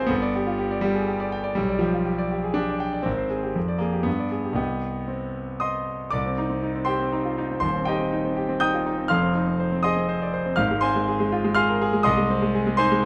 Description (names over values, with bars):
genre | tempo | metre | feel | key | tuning
classical, virtuoso piano study | 121 BPM | 3/4 | rubato | C minor | A4 = 440 Hz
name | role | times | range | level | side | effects
clear concert grand piano | solo | 0.0-13.1 s | Eb1 to G6 | -24 LUFS | equal | none
room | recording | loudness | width
light reverb | close, detailed microphones | -24 LUFS | mono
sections
0.0-6.1 A section; 6.1-13.1 A section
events
none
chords
0.1 G; 1.6 G/B; 3.1 Ab; 3.6 Ddim/F; 4.1 G; 4.6 Cm; 7.6 Cm/Eb; 9.1 Fm7; 10.6 Fm/Ab; 12.1 Ab/C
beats
| 0.10 0.59 1.09 | 1.58 2.07 2.56 | 3.06 3.56 4.06 | 4.58 5.10 5.62 | 6.14 6.64 7.13 | 7.63 8.12 8.62 | 9.11 9.60 10.10 | 10.59 11.08 11.57 | 12.06 12.54 13.03